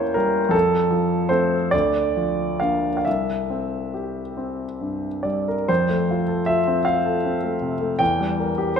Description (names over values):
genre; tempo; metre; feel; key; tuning
classical, romantic nocturne for solo piano; 44-55 BPM (dotted quarters); 12/8; rubato; F major; A4 = 440 Hz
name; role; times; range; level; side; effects
warm concert grand piano; solo; 0.0-8.8 s; C2 to G5; -20 LUFS; equal; none
room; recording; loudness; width
moderate concert hall reverb, RT60 2.0 s; none; -19 LUFS; side -7 dB against mid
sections
0.0-5.7 A section; 5.7-8.8 A section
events
none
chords
0.0 Edim7; 0.5 F; 1.7 Bb/D; 3.1 C; 5.7 F; 8.0 Edim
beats
| 0.54 1.73 3.05 4.37 | 5.69 6.86 8.00